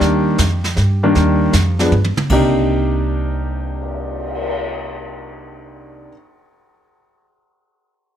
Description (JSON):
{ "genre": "jazz piano trio", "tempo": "157 BPM", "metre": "3/4", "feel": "swing 66% on 8ths", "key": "C minor", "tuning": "A4 = 440 Hz", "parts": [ { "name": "warm grand piano", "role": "melody", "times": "0.0-6.1 s", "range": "C3 to G4", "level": "-18 LUFS", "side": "equal", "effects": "plate reverb" }, { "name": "upright bass", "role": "bass", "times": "0.0-6.1 s", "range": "C2 to G2", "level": "-19 LUFS", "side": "equal", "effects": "none" }, { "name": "jazz brush drum kit", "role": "drums", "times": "0.0-4.5 s", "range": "brushed snare drum, crash cymbal, cymbal swell, hi-hat, kick drum, snare drum, toms", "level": "-23 LUFS", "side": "right 1 dB", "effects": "none" } ], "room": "moderate club reverb, RT60 0.6 s", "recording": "none", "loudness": "-15 LUFS", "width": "side -10 dB against mid", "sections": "0.0-2.3 A section; 2.3-4.6 B section", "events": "drum fill 1.9-2.3", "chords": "0.0 Ebmaj9; 1.9 N.C.; 2.3 Cm9" }